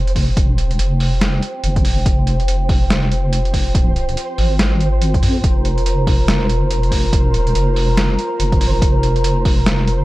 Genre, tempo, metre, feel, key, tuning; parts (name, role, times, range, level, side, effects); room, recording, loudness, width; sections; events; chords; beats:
deep dubstep; 142 BPM; 4/4; swing 60% on 16ths, half-time; A4 = 440 Hz
dark analog pad; sustained chords; 0.0-10.0 s; F4 to Bb5; -24 LUFS; right 1 dB; chorus, vintage 12-bit sampler grit
deep soft wobble bass; bass; 0.0-10.0 s; F1 to F2; -17 LUFS; equal; chorus
flickering grainy texture; texture; 0.0-10.0 s; C5; -27 LUFS; right 2 dB; built-in reverb
trip hop sampler-style drum kit; drums; 0.1-10.0 s; hi-hat, snare drum; -22 LUFS; equal
electronic kick drum; drums; 0.2-9.6 s; -16 LUFS; equal
little or no reverb; dark, warm production; -14 LUFS; side -18 dB against mid
0.0-10.0 A section
0.0 F5
| 0.37 0.79 1.21 1.64 | 2.06 2.48 2.90 3.33 | 3.75 4.17 4.59 5.02 | 5.44 5.86 6.28 6.71 | 7.13 7.55 7.97 8.40 | 8.82 9.24 9.66